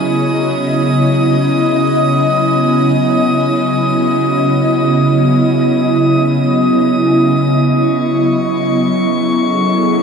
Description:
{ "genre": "ambient", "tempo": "free time", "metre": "none", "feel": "none", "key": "unclear", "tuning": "A4 = 443 Hz", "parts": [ { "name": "ethereal airy pad", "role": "sustained chords", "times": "0.0-10.0 s", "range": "C#3 to D#5", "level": "-12 LUFS", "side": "equal", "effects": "ensemble chorus, built-in reverb" }, { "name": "organ-like drone", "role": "drone", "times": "0.0-10.0 s", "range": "F#3 to C#4", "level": "-20 LUFS", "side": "equal", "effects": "ensemble chorus, built-in reverb" }, { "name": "drifting glass-harmonics texture", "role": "texture", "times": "0.0-10.0 s", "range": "C#6 to D#6", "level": "-20 LUFS", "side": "left 1 dB", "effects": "chorus, built-in reverb" } ], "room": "wet cathedral reverb, RT60 5.1 s", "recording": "in a vast, echoing space, cassette tape", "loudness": "-11 LUFS", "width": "side -6 dB against mid", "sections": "0.0-7.7 A section; 7.7-10.0 B section", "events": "none", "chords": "0.0 C#m9; 7.7 F#m9", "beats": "free time" }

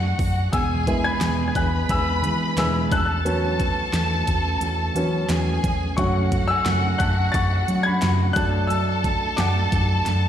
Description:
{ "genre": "piano-driven pop", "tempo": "88 BPM", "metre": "4/4", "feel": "straight", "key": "A major", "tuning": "A4 = 440 Hz", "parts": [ { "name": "warm studio violin section", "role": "second line", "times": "0.0-10.3 s", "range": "F#4 to B5", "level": "-26 LUFS", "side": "equal", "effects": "none" }, { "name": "warm grand piano", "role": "accompaniment", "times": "0.0-10.3 s", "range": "F#3 to A6", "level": "-25 LUFS", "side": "left 2 dB", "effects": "slapback echo" }, { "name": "vintage muted fingered electric bass", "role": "bass", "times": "0.0-10.3 s", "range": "E2 to F#3", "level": "-24 LUFS", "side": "equal", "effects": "none" }, { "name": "pop drum kit", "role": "drums", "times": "0.2-10.2 s", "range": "hi-hat, kick drum, snare drum", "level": "-26 LUFS", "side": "equal", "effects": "none" }, { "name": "mellow electric guitar", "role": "riff", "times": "0.5-10.3 s", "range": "E2 to G#4", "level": "-28 LUFS", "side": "right 4 dB", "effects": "none" } ], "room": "light reverb", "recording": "live gig heard through the venue's PA, recital hall reverb", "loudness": "-19 LUFS", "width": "side -10 dB against mid", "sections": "0.0-10.3 A section", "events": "grand piano solo 0.0-10.3; drum fill 10.1", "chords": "0.0 D/F#; 0.5 E; 2.9 A6/E; 6.0 F#m; 8.4 D/F#", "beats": "| 0.53 1.21 1.89 2.58 | 3.26 3.94 4.62 5.30 | 5.98 6.66 7.34 8.02 | 8.70 9.38 10.06" }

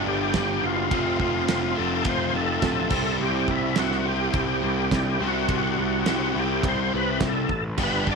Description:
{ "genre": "classic rock", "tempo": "105 BPM", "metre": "4/4", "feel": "straight", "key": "unclear", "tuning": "A4 = 442 Hz", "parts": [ { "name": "overdriven tonewheel organ", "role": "melody", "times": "0.0-8.2 s", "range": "E4 to D5", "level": "-27 LUFS", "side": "left 1 dB", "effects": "slow rotary speaker, chorus vibrato, tape echo" }, { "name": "crunchy overdriven guitar", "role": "riff", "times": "0.0-8.2 s", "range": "F2 to C5", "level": "-31 LUFS", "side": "right 11 dB", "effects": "none" }, { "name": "distorted electric guitar", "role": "riff", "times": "0.0-8.2 s", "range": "F2 to C5", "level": "-29 LUFS", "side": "left 13 dB", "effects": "overdrive" }, { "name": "overdriven electric guitar", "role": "riff", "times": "0.0-8.2 s", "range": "F2 to C4", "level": "-31 LUFS", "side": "right 1 dB", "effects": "none" }, { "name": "fuzz picked electric bass", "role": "bass", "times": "0.0-8.2 s", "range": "D1 to C2", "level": "-29 LUFS", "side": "left 1 dB", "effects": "overdrive" }, { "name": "big rock drum kit", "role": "drums", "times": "0.3-8.2 s", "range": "crash cymbal, kick drum, ride cymbal, snare drum", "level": "-29 LUFS", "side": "right 3 dB", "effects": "none" } ], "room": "light reverb, studio reverb", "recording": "1960s-style stereo with parts hard left and right", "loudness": "-21 LUFS", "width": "side -4 dB against mid", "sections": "0.0-8.2 A section", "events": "none", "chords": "0.0 G; 0.9 F; 2.9 C", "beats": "0.34 | 0.91 1.48 2.06 2.63 | 3.20 3.77 4.34 4.92 | 5.49 6.06 6.64 7.21 | 7.78" }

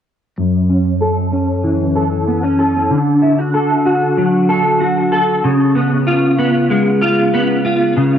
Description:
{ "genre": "dream pop", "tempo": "95 BPM", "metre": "4/4", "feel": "straight", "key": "F# minor", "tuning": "A4 = 435 Hz", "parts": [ { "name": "clean electric guitar", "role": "arpeggios", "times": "0.4-8.2 s", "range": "F#2 to A4", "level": "-12 LUFS", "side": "equal", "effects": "ensemble chorus, low-pass filter, cassette tape, analog delay" } ], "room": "wet booth ambience, RT60 0.2 s", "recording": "home recording on cassette", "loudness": "-12 LUFS", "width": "side -9 dB against mid", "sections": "0.4-8.2 A section", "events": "filter sweep on clean electric guitar 0.4-8.2", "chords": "0.4 F#m7; 2.9 D; 5.4 C#7", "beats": "| 0.38 1.01 1.64 2.27 | 2.91 3.54 4.17 4.80 | 5.43 6.06 6.70 7.33 | 7.96" }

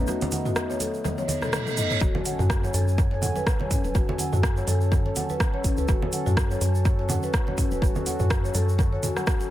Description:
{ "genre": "afro house", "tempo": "124 BPM", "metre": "4/4", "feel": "swing 56% on 16ths", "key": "F# dorian", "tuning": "A4 = 440 Hz", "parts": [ { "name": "warm analog pad", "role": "sustained chords", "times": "0.0-9.5 s", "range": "F#3 to G#5", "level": "-33 LUFS", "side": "left 1 dB", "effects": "chorus, sidechain pumping" }, { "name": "marimba with soft mallets", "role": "arpeggios", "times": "0.0-9.5 s", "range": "C#4 to F#5", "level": "-30 LUFS", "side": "left 2 dB", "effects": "sidechain pumping, dub echo" }, { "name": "woody FM bass", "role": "bass", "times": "0.0-9.0 s", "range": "E1 to F#2", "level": "-25 LUFS", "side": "equal", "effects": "tube saturation, sidechain pumping" }, { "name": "congas", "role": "percussion", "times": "0.1-9.5 s", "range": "none", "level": "-33 LUFS", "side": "right 2 dB", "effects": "tape echo" }, { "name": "egg shaker", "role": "percussion", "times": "0.1-9.5 s", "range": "none", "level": "-38 LUFS", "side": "right 3 dB", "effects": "tape echo" }, { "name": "house drum kit", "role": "drums", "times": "0.2-9.4 s", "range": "hi-hat, rim click, toms", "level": "-30 LUFS", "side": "equal", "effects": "tape echo" }, { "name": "reverse cymbal and impact", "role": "sound effects", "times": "1.3-3.9 s", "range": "none", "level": "-34 LUFS", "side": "right 4 dB", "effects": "none" }, { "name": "electronic kick drum", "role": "drums", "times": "2.0-9.4 s", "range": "none", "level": "-24 LUFS", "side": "equal", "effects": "none" } ], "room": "light reverb", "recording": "echo-heavy mix", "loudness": "-22 LUFS", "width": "side -14 dB against mid", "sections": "0.0-2.0 A section; 2.0-9.5 B section", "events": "break 0.1-2.0; drum fill 1.0-2.0; reverse cymbal 1.3-2.0; drop 2.0-9.5; impact 2.0-4.0", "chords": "0.0 B7; 2.0 F#m", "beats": "| 0.08 0.56 1.05 1.53 | 2.02 2.50 2.98 3.47 | 3.95 4.43 4.92 5.40 | 5.89 6.37 6.85 7.34 | 7.82 8.30 8.79 9.27" }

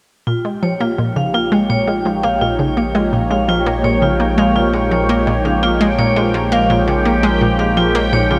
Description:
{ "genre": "ambient, sequencer-driven space music", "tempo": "84 BPM", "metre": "4/4", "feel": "straight", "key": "unclear", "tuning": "A4 = 440 Hz", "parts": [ { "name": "phased analog pad", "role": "sustained chords", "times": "0.3-8.4 s", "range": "F3 to Db5", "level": "-21 LUFS", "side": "equal", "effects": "phaser, chorus" }, { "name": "vibraphone with hard mallets", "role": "arpeggios", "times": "0.3-8.4 s", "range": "F4 to F5", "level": "-22 LUFS", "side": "equal", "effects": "tape echo" }, { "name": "analog pluck", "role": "riff", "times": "0.3-8.4 s", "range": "Bb2 to Bb3", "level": "-20 LUFS", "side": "equal", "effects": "chorus, tape echo" }, { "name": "fat analog bass", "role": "bass", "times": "0.3-8.4 s", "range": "Bb1", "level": "-25 LUFS", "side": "equal", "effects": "none" }, { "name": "bubbling stepped-filter texture", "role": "texture", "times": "0.3-8.4 s", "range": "G4 to G5", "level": "-26 LUFS", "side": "equal", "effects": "chorus, built-in reverb" } ], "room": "wet lush hall reverb, RT60 3.1 s", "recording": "cassette tape", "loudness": "-16 LUFS", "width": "mono", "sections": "0.3-8.4 A section", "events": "none", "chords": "0.3 Bbm", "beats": "| 0.27 0.99 1.70 2.41 | 3.13 3.84 4.56 5.27 | 5.99 6.70 7.41 8.13" }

